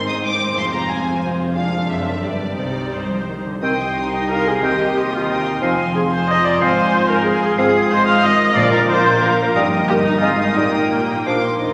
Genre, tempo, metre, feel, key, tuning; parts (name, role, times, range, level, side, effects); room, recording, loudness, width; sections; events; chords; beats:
classical; 181 BPM; 3/4; straight; C minor, Eb major from 7.6 s; A4 = 440 Hz
rich symphonic violin section; melody; 0.0-11.7 s; Eb4 to Eb6; -30 LUFS; equal
warm chamber violin section; second line; 0.0-11.7 s; D4 to Eb6; -30 LUFS; equal
rich chamber viola section; accompaniment; 0.0-11.7 s; Eb3 to F5; -22 LUFS; equal
concert harp; arpeggios; 0.0-11.7 s; F2 to C5; -28 LUFS; equal
clear symphonic double bass section; bass; 0.0-11.7 s; F1 to Eb2; -35 LUFS; equal
rich symphonic cello section; bass; 0.0-11.7 s; C2 to G3; -27 LUFS; equal
clear oboe; second line; 3.6-11.4 s; Eb5 to G5; -28 LUFS; equal
dark clarinet; second line; 3.6-11.7 s; Bb3 to Eb4; -31 LUFS; equal
silver concert flute; second line; 3.6-11.4 s; D5 to C6; -27 LUFS; equal
mellow bassoon; accompaniment; 3.6-11.4 s; Eb3 to Ab3; -29 LUFS; equal
warm French horn section; sustained chords; 3.6-11.7 s; Eb3 to G4; -28 LUFS; equal
timpani; percussion; 8.6-9.0 s; Bb2; -30 LUFS; equal
wet concert hall reverb, RT60 1.8 s; -18 LUFS; mono
0.0-3.6 A section; 3.6-11.6 B section
0.0 Ab; 0.6 Fm; 1.6 Ddim/F; 1.9 D7/F#; 2.2 G; 2.6 Cm; 4.6 Cm/Eb; 5.6 Fm; 6.6 Fm/Ab; 7.6 Fm7/Ab; 8.6 Bb; 9.6 Eb/G; 10.2 Fm7/Ab; 10.6 Eb/Bb; 11.3 Bb
0.25 | 0.57 0.90 1.24 | 1.57 1.90 2.23 | 2.58 2.93 3.28 | 3.62 3.96 4.29 | 4.63 4.96 5.29 | 5.62 5.95 6.28 | 6.61 6.93 7.26 | 7.59 7.91 8.24 | 8.57 8.89 9.22 | 9.56 9.88 10.22 | 10.56 10.92 11.27 | 11.61